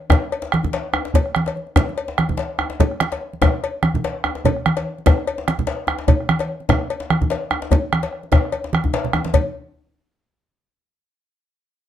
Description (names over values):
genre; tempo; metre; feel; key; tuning
west african traditional, West African drum ensemble; 147 BPM; 4/4; swing 55% on 16ths; none; none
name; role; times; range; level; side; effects
bombo; percussion; 0.1-9.5 s; none; -19 LUFS; right 2 dB; none
congas; percussion; 0.1-9.5 s; none; -22 LUFS; right 3 dB; none
cowbell; percussion; 0.1-9.5 s; none; -24 LUFS; left 5 dB; none
djembe; percussion; 0.1-9.5 s; none; -23 LUFS; left 4 dB; none
room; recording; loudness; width
light reverb; dark, warm production; -18 LUFS; side -10 dB against mid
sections
0.0-9.3 A section; 9.3-11.0 B section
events
speeding up 0.0-11.0; drum fill 8.9-9.3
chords
none